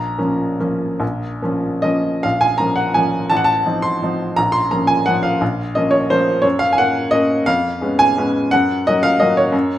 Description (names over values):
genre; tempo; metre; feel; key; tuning
classical, piano waltz; 141-186 BPM; 3/4; rubato; Bb minor; A4 = 440 Hz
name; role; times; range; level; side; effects
clear upright piano; solo; 0.0-9.8 s; A1 to C6; -15 LUFS; equal; none
room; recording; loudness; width
moderate recital hall reverb, RT60 1.3 s; close, detailed microphones; -15 LUFS; side -12 dB against mid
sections
0.0-2.2 A section; 2.2-9.8 A section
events
none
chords
0.0 Bbm; 3.3 F7/A; 4.4 Bbm; 6.4 Gb; 7.5 Db7/F; 8.5 Gb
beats
0.18 0.60 | 1.02 1.44 1.85 | 2.24 2.60 2.97 | 3.31 3.66 4.02 | 4.37 4.72 5.07 | 5.41 5.76 6.11 | 6.45 6.78 7.12 | 7.47 7.82 8.17 | 8.52 8.86 9.21 | 9.53